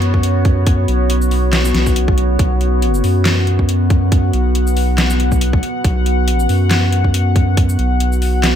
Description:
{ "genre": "deep dubstep", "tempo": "139 BPM", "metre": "4/4", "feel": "swing 55% on 16ths, half-time", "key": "unclear", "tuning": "A4 = 440 Hz", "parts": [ { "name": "deep dark ambient pad", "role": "sustained chords", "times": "0.0-8.6 s", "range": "B3 to F#5", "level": "-19 LUFS", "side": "left 1 dB", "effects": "chorus, built-in reverb" }, { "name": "soft dub sub bass", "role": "bass", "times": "0.0-8.6 s", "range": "B1 to F#2", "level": "-15 LUFS", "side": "equal", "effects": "none" }, { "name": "dubstep drum kit", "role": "drums", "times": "0.0-8.5 s", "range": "handclaps, hi-hat, shaker, snare drum", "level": "-20 LUFS", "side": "equal", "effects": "overdrive" }, { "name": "electronic kick drum", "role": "drums", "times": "0.1-7.7 s", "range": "none", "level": "-16 LUFS", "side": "equal", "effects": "none" } ], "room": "light reverb", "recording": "none", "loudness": "-12 LUFS", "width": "side -9 dB against mid", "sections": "0.0-8.6 A section", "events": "none", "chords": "0.0 B5" }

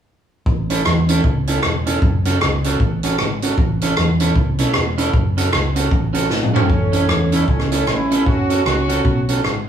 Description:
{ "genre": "ska", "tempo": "154 BPM", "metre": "4/4", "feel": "swing 60% on 8ths", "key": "A major", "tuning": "A4 = 441 Hz", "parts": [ { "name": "hollow-body short-scale fingered electric bass", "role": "bass", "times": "0.5-9.7 s", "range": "E1 to E2", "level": "-20 LUFS", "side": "equal", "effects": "tube saturation" }, { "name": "swinging big-band drum kit", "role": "drums", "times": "0.5-9.5 s", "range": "hi-hat, kick drum, rim click, snare drum, toms", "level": "-18 LUFS", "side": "equal", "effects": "none" }, { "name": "electric guitar at the edge of break-up", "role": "accompaniment", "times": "0.7-9.5 s", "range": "C#4 to A4", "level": "-21 LUFS", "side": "right 3 dB", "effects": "none" }, { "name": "warm horn section", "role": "melody", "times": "6.6-9.2 s", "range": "A3 to F#4", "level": "-20 LUFS", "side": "right 1 dB", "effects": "none" } ], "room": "wet large studio reverb, RT60 0.9 s", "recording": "band playing live in one room, small room ambience", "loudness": "-15 LUFS", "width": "side -9 dB against mid", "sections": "0.5-6.7 A section; 6.7-9.7 B section", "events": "drum fill 6.3-6.7", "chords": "0.5 A; 2.0 F#m; 3.6 A; 5.1 F#m; 6.7 A; 8.3 F#m" }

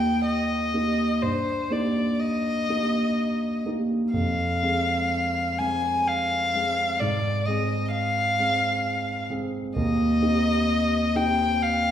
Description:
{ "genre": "classical, romantic duo for violin and grand piano", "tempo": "63 BPM", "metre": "3/4", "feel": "uneven beats, rubato", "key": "unclear", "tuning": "A4 = 440 Hz", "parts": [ { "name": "warm violin", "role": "melody", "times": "0.0-11.9 s", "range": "C5 to Ab5", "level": "-25 LUFS", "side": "left 2 dB", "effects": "none" }, { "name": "dark concert grand piano", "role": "accompaniment", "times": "0.0-11.9 s", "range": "Eb2 to Ab4", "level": "-24 LUFS", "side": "right 1 dB", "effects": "none" } ], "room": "wet recital hall reverb, RT60 1.4 s", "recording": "recorded in a church or concert hall", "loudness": "-22 LUFS", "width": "side -10 dB against mid", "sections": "0.0-11.9 A section", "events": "none", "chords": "0.0 Eb; 1.2 Eb/G; 4.1 Fm; 7.0 Fm/Ab; 9.8 Cm/Eb" }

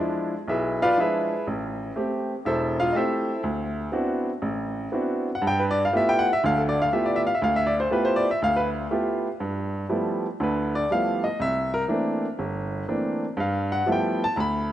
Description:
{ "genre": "solo jazz", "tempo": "121 BPM", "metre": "4/4", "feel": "swing 68% on 8ths", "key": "G mixolydian", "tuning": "A4 = 440 Hz", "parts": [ { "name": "clear baby grand piano", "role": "solo", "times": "0.0-14.7 s", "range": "E1 to B5", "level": "-22 LUFS", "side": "equal", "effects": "none" } ], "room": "moderate lush hall reverb, RT60 2.8 s", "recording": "rough home demo mix, nothing above 10.4 kHz", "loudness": "-22 LUFS", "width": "side -12 dB against mid", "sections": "0.0-9.4 A section; 9.4-14.7 A section", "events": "grand piano solo 0.0-14.7", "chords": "0.0 E7b9; 1.5 Am7; 3.4 D13; 5.4 G13; 11.4 C13; 13.4 G13" }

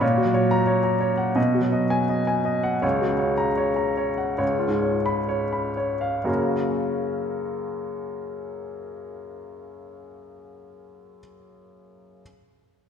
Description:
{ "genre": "classical, romantic character piece for solo piano", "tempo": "59-92 BPM", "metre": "4/4", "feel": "rubato", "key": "F# major", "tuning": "A4 = 440 Hz", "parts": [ { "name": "clear baby grand piano", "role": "solo", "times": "0.0-12.2 s", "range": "C#2 to B5", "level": "-22 LUFS", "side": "equal", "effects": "none" } ], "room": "wet concert hall reverb, RT60 2.0 s", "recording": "recorded in a church or concert hall", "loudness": "-21 LUFS", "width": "side -7 dB against mid", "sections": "0.0-6.3 A section; 6.3-10.0 B section", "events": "slowing down 0.0-6.3", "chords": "0.0 F#/A#; 1.4 G#m7/B; 2.8 F#/C#; 4.4 C#7; 6.3 F#" }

